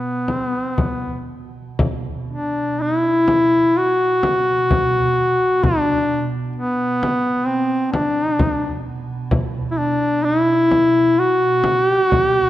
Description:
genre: caucasian folk, Caucasian lament.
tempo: 58-66 BPM.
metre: 4/4.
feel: rubato.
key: B phrygian.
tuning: A4 = 441 Hz.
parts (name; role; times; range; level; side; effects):
clear duduk; melody; 0.0-12.5 s; B3 to F#4; -16 LUFS; left 1 dB; none.
evolving wavetable pad; drone; 0.0-12.5 s; B2; -28 LUFS; right 4 dB; phaser, built-in reverb.
frame drum; percussion; 0.3-12.3 s; none; -23 LUFS; left 1 dB; none.
room: moderate concert hall reverb, RT60 1.9 s.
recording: none.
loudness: -16 LUFS.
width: side -14 dB against mid.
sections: 0.0-1.8 A section; 1.8-12.5 B section.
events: none.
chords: none.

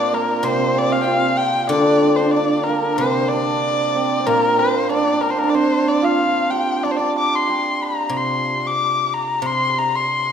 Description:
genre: chinese traditional, Chinese chamber ensemble.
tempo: 94 BPM.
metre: 2/4.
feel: straight.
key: unclear.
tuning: A4 = 440 Hz.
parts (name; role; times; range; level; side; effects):
dark erhu; melody; 0.0-10.3 s; Bb4 to D6; -19 LUFS; left 3 dB; none.
hammered dulcimer; second line; 0.0-10.3 s; Bb3 to G4; -21 LUFS; right 5 dB; none.
guzheng; accompaniment; 0.0-10.3 s; Bb2 to D3; -23 LUFS; left 2 dB; none.
room: wet recital hall reverb, RT60 1.5 s.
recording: minimal, uncompressed stereo recording.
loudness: -16 LUFS.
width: side -8 dB against mid.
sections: 0.0-8.1 A section; 8.1-10.3 B section.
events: none.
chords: none.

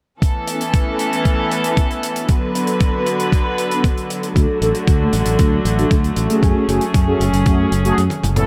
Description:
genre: italo disco.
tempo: 116 BPM.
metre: 4/4.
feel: straight.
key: A major.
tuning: A4 = 440 Hz.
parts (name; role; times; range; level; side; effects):
warm studio string section; sustained chords; 0.2-8.5 s; D3 to B4; -22 LUFS; equal; vintage 12-bit sampler grit.
electronic kick drum; drums; 0.2-7.6 s; none; -18 LUFS; equal; none.
tight funk drum kit; drums; 0.2-8.5 s; hi-hat, toms; -30 LUFS; equal; none.
mellow synth brass; stabs; 0.5-8.5 s; A3 to B4; -24 LUFS; equal; chorus, phaser, delay.
fingered electric bass; bass; 4.4-8.4 s; F#1 to F#2; -21 LUFS; equal; none.
room: light reverb, small room ambience.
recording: none.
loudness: -17 LUFS.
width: mono.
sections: 0.2-8.5 A section.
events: filter sweep on analog polysynth 0.2-8.5; break 8.0-8.5; drum fill 8.1-8.5.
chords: 0.2 Aadd9; 2.3 Bm; 4.4 D; 6.4 F#madd9.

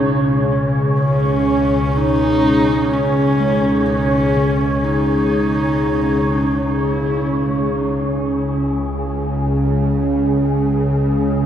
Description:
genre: dark ambient drone.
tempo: free time.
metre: none.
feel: none.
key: unclear.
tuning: A4 = 440 Hz.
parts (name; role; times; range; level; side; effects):
deep dark ambient pad; sustained chords; 0.0-11.5 s; C#4 to D#5; -21 LUFS; left 1 dB; chorus, built-in reverb.
quartz singing bowl; arpeggios; 0.0-8.0 s; B2 to G#3; -25 LUFS; right 1 dB; tape echo.
bowed-like drone; drone; 0.0-11.5 s; C#2 to C#3; -18 LUFS; equal; built-in reverb.
wind-like tuned noise texture; texture; 0.0-11.5 s; G#4 to C#5; -26 LUFS; right 1 dB; built-in reverb.
dark horsehead fiddle; melody; 1.0-7.3 s; C#4 to D#4; -22 LUFS; equal; tape echo.
room: wet echo chamber reverb, RT60 2.6 s.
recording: echo-heavy mix, cassette tape.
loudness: -15 LUFS.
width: side -9 dB against mid.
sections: 0.0-7.8 A section; 7.8-11.5 B section.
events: none.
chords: 0.0 C#sus2.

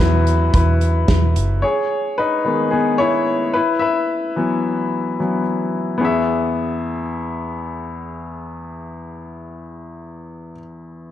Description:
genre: piano-driven pop.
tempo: 110 BPM.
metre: 4/4.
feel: straight.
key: E major.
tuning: A4 = 441 Hz.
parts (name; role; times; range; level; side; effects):
clear baby grand piano; accompaniment; 0.0-11.1 s; E2 to E5; -19 LUFS; left 2 dB; none.
vintage muted fingered electric bass; bass; 0.0-1.6 s; F#1 to E2; -16 LUFS; right 1 dB; none.
downlifter; sound effects; 0.1-1.6 s; none; -38 LUFS; right 2 dB; none.
modern studio drum kit; drums; 0.3-1.5 s; hi-hat, kick drum, snare drum; -18 LUFS; right 1 dB; none.
room: moderate plate reverb, RT60 1.7 s, small room ambience.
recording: dark, warm production.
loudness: -16 LUFS.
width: side -11 dB against mid.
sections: 0.0-6.0 A section; 6.0-10.4 B section.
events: grand piano solo 0.0-6.0.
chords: 0.0 Esus2; 1.6 G#m; 3.5 Esus2; 6.0 E.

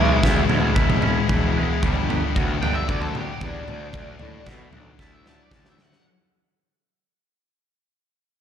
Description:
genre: quiet-loud alternative rock.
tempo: 113 BPM.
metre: 4/4.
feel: straight.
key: unclear.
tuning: A4 = 440 Hz.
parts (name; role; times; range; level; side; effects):
octave-fuzz lead guitar; melody; 0.0-6.1 s; D4 to A5; -29 LUFS; right 1 dB; distortion, slapback echo.
twelve-string electric guitar; arpeggios; 0.0-6.0 s; E2 to F#4; -29 LUFS; right 7 dB; phaser, slapback echo, analog delay.
thick fuzz guitar; riff; 0.0-6.0 s; G2 to E4; -26 LUFS; left 9 dB; distortion, slapback echo.
fuzz picked electric bass; bass; 0.0-5.9 s; E1 to B2; -28 LUFS; right 1 dB; overdrive.
big rock drum kit; drums; 0.2-6.0 s; kick drum, snare drum, toms; -22 LUFS; right 1 dB; none.
room: light reverb, small room ambience.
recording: none.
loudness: -19 LUFS.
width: side -9 dB against mid.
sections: 0.0-6.0 A section.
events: fade-out 0.0-6.0; lead electric guitar solo 0.0-6.0; drum fill 5.0-6.0.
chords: 0.0 E6; 1.8 Gmaj7; 3.7 Dadd9.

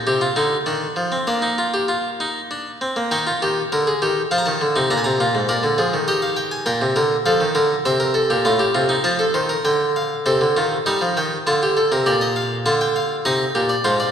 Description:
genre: classical, baroque-style 3-part fugue for harpsichord.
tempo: 101 BPM.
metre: 3/4.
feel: straight.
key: unclear.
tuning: A4 = 441 Hz.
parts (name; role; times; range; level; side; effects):
harpsichord; solo; 0.0-14.1 s; Ab2 to Bb5; -17 LUFS; equal; none.
room: wet concert hall reverb, RT60 2.1 s.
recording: heard from further back in the room.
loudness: -17 LUFS.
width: side -8 dB against mid.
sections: 0.0-3.1 A section; 3.1-10.3 B section; 10.3-14.1 A section.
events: none.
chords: 0.0 Bb; 3.1 Eb; 4.3 F7; 4.9 Bb; 6.1 Eb; 6.7 Bb; 7.9 C7; 8.5 F/A; 9.7 Bb/D; 10.3 Adim/C; 11.5 Dm; 12.1 Gm/Bb; 13.3 Cm.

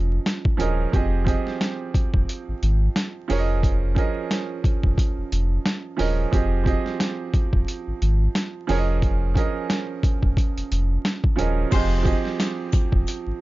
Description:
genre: hip hop, boom-bap hip-hop.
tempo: 89 BPM.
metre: 4/4.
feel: swing 57% on 16ths.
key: F minor.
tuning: A4 = 440 Hz.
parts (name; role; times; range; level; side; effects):
warm baby grand piano; accompaniment; 0.0-13.4 s; F3 to Eb5; -27 LUFS; right 6 dB; high-pass filter, low-pass filter.
warm sub bass; bass; 0.0-13.3 s; Eb1 to Ab1; -22 LUFS; equal; none.
boom bap sampler-style drum kit; drums; 0.3-13.3 s; crash cymbal, hi-hat, kick drum, snare drum; -22 LUFS; equal; overdrive.
warm horn section; stabs; 11.7-11.9 s; Ab3 to C5; -32 LUFS; left 7 dB; high-pass filter, low-pass filter, analog delay.
sleigh bells; percussion; 11.7-13.2 s; none; -43 LUFS; left 17 dB; none.
room: little or no reverb.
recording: dark, warm production, vinyl crackle, nothing above 7.5 kHz.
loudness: -20 LUFS.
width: side -18 dB against mid.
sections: 0.0-11.7 A section; 11.7-13.4 B section.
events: none.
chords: 0.0 Eb9sus4/F; 0.9 Fm7; 3.3 Eb9sus4/F; 6.3 Fm7; 8.7 Eb9sus4/F; 11.7 Fm7.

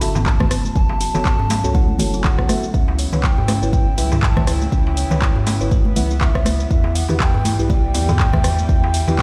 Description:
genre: afro house.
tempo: 121 BPM.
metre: 4/4.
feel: swing 57% on 16ths.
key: unclear.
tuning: A4 = 439 Hz.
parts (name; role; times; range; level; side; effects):
breathy bright bass bansuri; melody; 0.0-9.2 s; E5 to A5; -29 LUFS; equal; tape echo.
kalimba; arpeggios; 0.0-9.1 s; C#3 to E5; -31 LUFS; equal; sidechain pumping, tape echo.
mellow tine electric piano; stabs; 0.0-9.2 s; E4 to E5; -31 LUFS; equal; sidechain pumping, tape echo.
warm sub bass; bass; 0.0-9.2 s; F#1 to E2; -24 LUFS; equal; sidechain pumping.
afro-pop drum kit; drums; 0.0-9.2 s; handclaps, hi-hat, rim click, shaker, toms; -26 LUFS; equal; studio ambience.
darbuka; percussion; 0.0-9.2 s; none; -28 LUFS; equal; none.
electronic kick drum; drums; 0.3-9.2 s; none; -20 LUFS; equal; studio ambience.
congas; percussion; 0.4-9.2 s; none; -26 LUFS; equal; none.
dark studio string section; sustained chords; 2.7-9.2 s; C#3 to E4; -34 LUFS; equal; sidechain pumping.
room: small room ambience.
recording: played on a big sound system in a bare room, stone room reverb.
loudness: -17 LUFS.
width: mono.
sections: 0.0-9.2 A section.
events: none.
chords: 0.0 F#m; 2.7 C#m7b5; 6.7 Em.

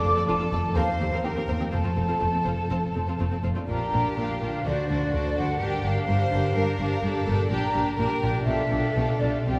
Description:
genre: classical, dramatic, fast romantic movement for symphony orchestra.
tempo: 125 BPM.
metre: 4/4.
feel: straight.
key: unclear.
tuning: A4 = 438 Hz.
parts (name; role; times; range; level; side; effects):
mellow hollow flute section; second line; 0.0-9.6 s; D5 to D6; -32 LUFS; equal; none.
rich symphonic violin section; second line; 0.0-9.6 s; F#4 to C5; -35 LUFS; equal; none.
rich studio viola section; accompaniment; 0.0-9.6 s; A3 to Bb4; -35 LUFS; equal; none.
concert harp; arpeggios; 0.0-9.6 s; F2 to D5; -35 LUFS; equal; none.
warm studio violin section; melody; 0.1-9.6 s; F4 to D5; -39 LUFS; equal; none.
rich symphonic cello section; bass; 0.1-9.5 s; Eb2 to D3; -33 LUFS; equal; none.
rich symphonic double bass section; bass; 0.1-9.5 s; F1 to Eb2; -32 LUFS; equal; none.
room: wet concert hall reverb, RT60 2.5 s.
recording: none.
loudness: -25 LUFS.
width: mono.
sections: 0.0-9.6 A section.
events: none.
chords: 0.0 Dm/F; 0.8 Cm7/Eb; 1.7 F; 3.7 Bb; 4.7 D7; 5.6 Gm7; 7.5 Gm/Bb; 8.5 G7/B.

